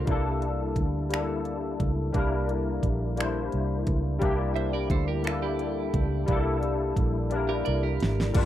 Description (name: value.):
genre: slow six-eight R&B.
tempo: 58 BPM (dotted quarters).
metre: 6/8.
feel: straight.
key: unclear.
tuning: A4 = 441 Hz.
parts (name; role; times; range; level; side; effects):
clean electric guitar; second line; 0.0-0.1, 4.6-8.3 s; E4 to E5; -34 LUFS; right 13 dB; wide subtle chorus.
barky tine electric piano; accompaniment; 0.0-8.5 s; G3 to C5; -28 LUFS; left 3 dB; ensemble chorus.
vintage muted fingered electric bass; bass; 0.0-8.5 s; G1 to D2; -29 LUFS; right 1 dB; none.
smooth R&B drum kit; drums; 0.1-8.5 s; crash cymbal, finger snaps, hi-hat, kick drum, snare drum; -28 LUFS; right 1 dB; none.
room: little or no reverb.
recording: dry, close 1970s-style studio recording.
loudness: -25 LUFS.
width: side -12 dB against mid.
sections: 0.1-8.3 A section.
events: drum fill 7.3-8.3.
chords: 0.1 C13.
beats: | 0.07 1.11 | 2.14 3.18 | 4.21 5.25 | 6.28 7.32 | 8.35.